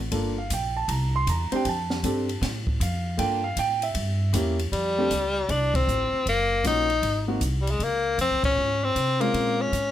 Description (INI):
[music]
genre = jazz, small-group swing and bop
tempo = 156 BPM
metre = 4/4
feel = swing 66% on 8ths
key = F major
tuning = A4 = 440 Hz
[part]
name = upright bass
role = bass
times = 0.0-9.9 s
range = Gb1 to C3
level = -28 LUFS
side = equal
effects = none
[part]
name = warm grand piano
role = accompaniment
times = 0.1-9.7 s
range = Ab3 to C6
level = -27 LUFS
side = right 2 dB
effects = none
[part]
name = open jazz drum kit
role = drums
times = 0.1-9.8 s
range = hi-hat, kick drum, ride cymbal, snare drum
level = -32 LUFS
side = equal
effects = none
[part]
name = edgy tenor saxophone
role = melody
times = 4.7-9.9 s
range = G3 to Eb4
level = -23 LUFS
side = left 2 dB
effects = none
[sound]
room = light reverb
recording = none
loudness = -22 LUFS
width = side -12 dB against mid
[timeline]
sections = 0.0-4.7 A section; 4.7-9.9 B section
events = band accent 5.7, 8.4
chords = 0.1 Gm7; 0.9 C; 1.7 F69; 3.2 Gm7; 4.0 Edim7; 4.7 Fadd9; 6.3 Ebm7; 7.0 Ab7; 7.8 Db6; 9.3 Bbm7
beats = | 0.12 0.50 0.88 1.27 | 1.65 2.03 2.42 2.80 | 3.18 3.57 3.95 4.33 | 4.72 5.10 5.49 5.87 | 6.26 6.64 7.03 7.41 | 7.80 8.18 8.57 8.96 | 9.34 9.72